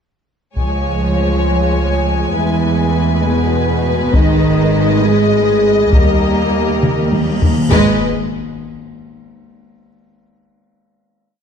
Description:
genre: cinematic, epic orchestral film score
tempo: 67 BPM (dotted quarters)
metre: 6/8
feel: straight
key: unclear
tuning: A4 = 440 Hz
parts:
  - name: warm symphonic violin section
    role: melody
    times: 0.6-8.1 s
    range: D#5 to G#5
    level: -23 LUFS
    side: left 4 dB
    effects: none
  - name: rich symphonic violin section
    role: second line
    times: 0.6-8.1 s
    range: A#4 to C#5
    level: -24 LUFS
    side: left 2 dB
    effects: none
  - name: rich symphonic viola section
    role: accompaniment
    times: 0.6-8.0 s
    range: G#3 to A#3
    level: -22 LUFS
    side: equal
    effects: none
  - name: warm French horn section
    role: sustained chords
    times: 0.6-8.0 s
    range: B3 to G#4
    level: -19 LUFS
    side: left 4 dB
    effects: none
  - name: rich symphonic cello section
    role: bass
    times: 0.6-8.1 s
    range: B2 to G#3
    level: -19 LUFS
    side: right 3 dB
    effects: none
  - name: rich symphonic double bass section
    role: bass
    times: 0.6-8.1 s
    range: G#1 to E2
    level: -19 LUFS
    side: right 4 dB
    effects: none
  - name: solo taiko drums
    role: drums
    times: 0.6-7.9 s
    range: none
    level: -16 LUFS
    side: left 1 dB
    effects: none
  - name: timpani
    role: percussion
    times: 5.9-8.0 s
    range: G#2 to D#3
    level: -21 LUFS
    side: left 2 dB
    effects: none
  - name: cymbal swell and impact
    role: sound effects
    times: 7.2-9.5 s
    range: none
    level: -28 LUFS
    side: left 1 dB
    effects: none
room: moderate scoring stage reverb, RT60 1.5 s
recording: dark, warm production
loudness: -12 LUFS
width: side -7 dB against mid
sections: 0.6-7.7 theme; 7.7-9.5 final chord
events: timpani fill 5.9-7.7; drum fill 6.8-7.7; cymbal swell 7.2-7.7; impact 7.7-9.5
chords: 0.6 C#; 2.4 E; 4.1 G#m; 5.9 D#; 7.7 N.C.

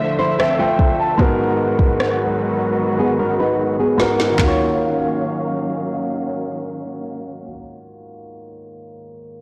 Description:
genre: contemporary R&B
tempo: 75 BPM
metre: 4/4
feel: straight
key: Eb minor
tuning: A4 = 440 Hz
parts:
  - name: clear grand piano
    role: accompaniment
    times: 0.0-9.4 s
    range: Ab2 to A5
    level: -24 LUFS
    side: equal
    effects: low-pass filter
  - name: rich studio string section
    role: sustained chords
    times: 0.0-7.5 s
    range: D3 to F5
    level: -25 LUFS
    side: equal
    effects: low-pass filter
  - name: nylon-string guitar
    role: arpeggios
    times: 0.2-4.4 s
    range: A3 to C5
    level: -24 LUFS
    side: equal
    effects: low-pass filter, digital delay
  - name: smooth R&B drum kit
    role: drums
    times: 0.4-4.6 s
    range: handclaps, kick drum, rim click, snare drum, toms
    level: -21 LUFS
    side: equal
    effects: none
room: light reverb, small room ambience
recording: blown-out, overdriven recording, overdrive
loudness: -18 LUFS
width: mono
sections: 0.0-4.4 A section; 4.4-7.6 B section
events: filter sweep 0.0-4.4; drum fill 2.8-4.4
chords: 0.0 Dm9; 1.2 Abm9; 4.4 Ebm9

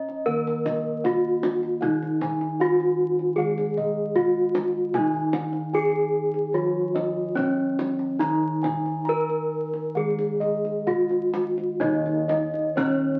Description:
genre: Javanese gamelan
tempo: 63-77 BPM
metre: 4/4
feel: straight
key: Eb slendro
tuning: A4 = 440 Hz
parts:
  - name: gamelan-type bronze metallophone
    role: melody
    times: 0.0-13.2 s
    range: Db4-25c to Eb5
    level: -26 LUFS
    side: equal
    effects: none
  - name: gamelan-type bronze metallophone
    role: accompaniment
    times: 0.0-13.2 s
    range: Eb3 to Db4-25c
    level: -36 LUFS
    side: equal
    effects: none
  - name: gamelan-type bossed gongs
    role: bass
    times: 0.0-13.2 s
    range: Eb2 to Db5-25c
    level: -35 LUFS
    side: equal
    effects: none
  - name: kendang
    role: percussion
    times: 0.1-13.0 s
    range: none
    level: -37 LUFS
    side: equal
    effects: none
  - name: gamelan-type bossed gongs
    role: arpeggios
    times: 0.3-13.2 s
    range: Db5-25c to Bb5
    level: -34 LUFS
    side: equal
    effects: none
  - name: gamelan-type bronze metallophone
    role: arpeggios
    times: 11.8-13.2 s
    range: Db5-25c to Eb5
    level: -31 LUFS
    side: equal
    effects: none
room: wet studio reverb, RT60 0.8 s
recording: very old 78 rpm record, vinyl crackle, nothing above 10.3 kHz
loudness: -24 LUFS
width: mono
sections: 0.0-11.8 A section; 11.8-13.2 B section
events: none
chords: none

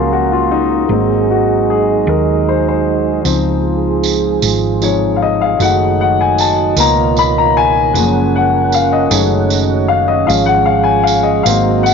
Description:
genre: slow gospel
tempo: 51 BPM (dotted quarters)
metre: 6/8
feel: straight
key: Db major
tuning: A4 = 441 Hz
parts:
  - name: dark upright piano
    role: accompaniment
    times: 0.0-11.9 s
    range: C3 to Cb6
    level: -14 LUFS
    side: left 9 dB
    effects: none
  - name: mellow French horn section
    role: sustained chords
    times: 0.0-11.9 s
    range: Db4 to F5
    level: -21 LUFS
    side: right 11 dB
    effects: none
  - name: percussive tonewheel organ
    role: sustained chords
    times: 0.0-11.9 s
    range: Cb3 to Gb5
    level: -18 LUFS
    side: right 13 dB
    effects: slow rotary speaker, chorus vibrato
  - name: hollow-body short-scale fingered electric bass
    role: bass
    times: 0.0-11.9 s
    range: Gb1 to Eb2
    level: -18 LUFS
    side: right 2 dB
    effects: none
  - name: tambourine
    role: percussion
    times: 3.2-11.9 s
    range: none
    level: -21 LUFS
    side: right 12 dB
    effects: none
room: moderate echo chamber reverb, RT60 1.9 s, small room reverb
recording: 1960s-style stereo with parts hard left and right, nothing above 7.4 kHz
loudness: -11 LUFS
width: side -6 dB against mid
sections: 0.0-11.9 A section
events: upright piano solo 0.0-11.9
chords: 0.0 Gbmaj7; 0.9 Ab7; 3.2 Dbmaj7; 5.6 Gbm6; 6.8 Db13; 7.9 Gbmaj7; 9.1 Gbm6; 10.3 Db/Ab

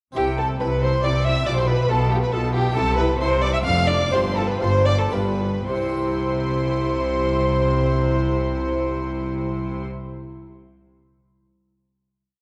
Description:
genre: classical, baroque-style concerto movement with solo episodes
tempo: 105-140 BPM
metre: 3/4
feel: straight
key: C major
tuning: A4 = 440 Hz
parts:
  - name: harpsichord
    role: accompaniment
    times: 0.1-10.3 s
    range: F2 to E5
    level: -36 LUFS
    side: equal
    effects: none
  - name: warm chamber violin section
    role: melody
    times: 0.2-9.8 s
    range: G5 to F6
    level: -34 LUFS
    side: equal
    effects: none
  - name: warm violin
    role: melody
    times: 0.2-9.8 s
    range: G4 to F5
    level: -27 LUFS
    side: equal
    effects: none
  - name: rich chamber violin section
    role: second line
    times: 0.2-9.9 s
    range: G4 to F5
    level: -32 LUFS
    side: equal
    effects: none
  - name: dark chamber viola section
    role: accompaniment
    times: 0.2-9.8 s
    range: D4 to F4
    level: -32 LUFS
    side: equal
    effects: none
  - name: rich chamber cello section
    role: bass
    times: 0.2-9.8 s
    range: F2 to C3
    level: -28 LUFS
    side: equal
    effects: none
  - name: rich chamber double bass section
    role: bass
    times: 0.2-9.8 s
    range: F1 to C2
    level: -28 LUFS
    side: equal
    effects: none
room: wet concert hall reverb, RT60 2.2 s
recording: dark, warm production, lossy compression artefacts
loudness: -21 LUFS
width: mono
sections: 0.2-5.7 ritornello; 5.7-9.1 final chord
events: slowing down 2.1-5.7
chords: 0.2 C; 1.5 G7/B; 2.8 C; 3.6 Dm/F; 4.1 G5; 5.7 C

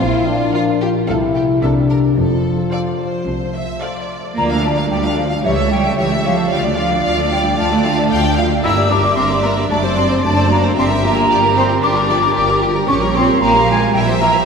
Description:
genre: cinematic, playful, whimsical film cue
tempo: 112 BPM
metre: 4/4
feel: straight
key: F major, D minor from 4.4 s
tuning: A4 = 440 Hz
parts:
  - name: rich studio violin section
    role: second line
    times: 0.0-14.4 s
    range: F4 to G5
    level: -24 LUFS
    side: left 1 dB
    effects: none
  - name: mellow French horn section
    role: sustained chords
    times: 0.0-4.1 s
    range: F3 to F4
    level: -18 LUFS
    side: left 2 dB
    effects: none
  - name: concert harp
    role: arpeggios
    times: 0.0-14.4 s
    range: F#2 to C6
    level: -22 LUFS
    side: left 5 dB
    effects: none
  - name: clear studio double bass section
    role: bass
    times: 0.0-14.4 s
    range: F1 to D2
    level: -21 LUFS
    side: right 4 dB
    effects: none
  - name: rich studio cello section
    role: bass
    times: 0.0-14.3 s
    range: C2 to E4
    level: -22 LUFS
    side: right 3 dB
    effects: none
  - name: rich studio violin section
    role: melody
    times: 0.5-14.4 s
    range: G4 to F5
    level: -23 LUFS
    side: left 2 dB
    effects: none
  - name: warm studio viola section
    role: accompaniment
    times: 0.5-14.4 s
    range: E3 to C5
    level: -23 LUFS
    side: equal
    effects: none
  - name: small flute group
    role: second line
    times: 4.4-14.4 s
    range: E5 to E6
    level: -18 LUFS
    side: equal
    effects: none
room: wet church reverb, RT60 2.9 s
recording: none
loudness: -13 LUFS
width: side -6 dB against mid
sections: 0.0-4.4 A section; 4.4-14.4 B section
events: none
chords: 0.0 Bb; 1.1 F/C; 1.6 C13; 2.2 F; 4.4 Dm; 5.4 A7/C#; 6.5 Dm; 8.6 Gm; 9.7 D7/F#; 10.8 Gm7; 12.9 Gm7b5/Bb; 13.9 C7/Bb

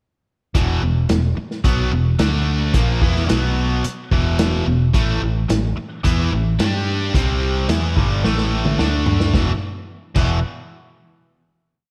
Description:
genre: classic rock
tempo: 109 BPM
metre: 4/4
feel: straight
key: unclear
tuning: A4 = 442 Hz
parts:
  - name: distorted electric guitar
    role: riff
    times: 0.5-10.4 s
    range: E2 to G4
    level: -26 LUFS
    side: equal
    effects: overdrive, slapback echo
  - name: vintage muted fingered electric bass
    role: bass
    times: 0.5-10.4 s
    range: E1 to G2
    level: -23 LUFS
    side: equal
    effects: none
  - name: vintage drum kit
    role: drums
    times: 0.5-10.3 s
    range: crash cymbal, hi-hat, kick drum, snare drum, toms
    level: -23 LUFS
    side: equal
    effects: none
  - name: cranked stack guitar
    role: riff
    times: 0.6-10.4 s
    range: E2 to G4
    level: -27 LUFS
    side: equal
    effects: overdrive, phaser
room: moderate recital hall reverb, RT60 1.6 s, small room ambience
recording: big arena sound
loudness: -19 LUFS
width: mono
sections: 0.5-9.3 riff; 9.3-11.5 final chord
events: drum fill 8.2-9.3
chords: 0.5 E5; 2.2 D5; 2.7 E5; 3.3 B5; 3.8 E5; 4.9 A5; 6.6 G5; 7.1 C5; 7.7 A5; 8.8 D5; 9.3 E5

